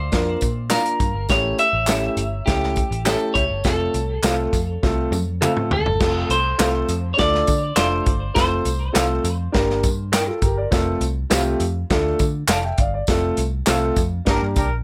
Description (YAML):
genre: uptempo 1960s-style soul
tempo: 102 BPM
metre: 4/4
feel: straight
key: F major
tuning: A4 = 442 Hz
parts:
  - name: clean electric guitar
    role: melody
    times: 0.0-9.5 s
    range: G4 to E5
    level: -25 LUFS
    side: equal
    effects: tape echo
  - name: vintage muted picked electric bass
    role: bass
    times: 0.0-14.8 s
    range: F1 to D3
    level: -27 LUFS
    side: equal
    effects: none
  - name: warm concert grand piano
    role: accompaniment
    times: 0.1-14.6 s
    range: A3 to A5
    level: -26 LUFS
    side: equal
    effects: none
  - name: warm soul drum kit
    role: drums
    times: 0.1-14.7 s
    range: crash cymbal, hi-hat, kick drum, snare drum, toms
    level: -25 LUFS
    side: equal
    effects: none
  - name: tambourine and handclaps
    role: percussion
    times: 0.1-14.7 s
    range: none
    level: -30 LUFS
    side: equal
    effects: none
  - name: electric guitar through a small old amp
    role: stabs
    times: 0.7-13.8 s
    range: G4 to G5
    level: -31 LUFS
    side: equal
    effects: spring reverb
  - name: warm horn section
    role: second line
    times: 14.3-14.7 s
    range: D4 to Bb4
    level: -27 LUFS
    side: equal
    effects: none
room: light reverb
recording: none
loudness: -20 LUFS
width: mono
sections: 0.0-6.0 A section; 6.0-14.8 B section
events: drum fill 4.8-6.0; band accent 13.1-14.8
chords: 0.0 Bb; 1.3 A7; 3.7 F; 7.2 Dm; 8.4 F; 9.5 Gm; 10.7 F; 11.9 Dm; 13.1 F; 14.3 Gm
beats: 0.13 0.71 | 1.30 1.89 2.48 3.07 | 3.65 4.24 4.83 5.42 | 6.01 6.60 7.18 7.77 | 8.36 8.95 9.54 10.13 | 10.72 11.31 11.90 12.49 | 13.08 13.67 14.26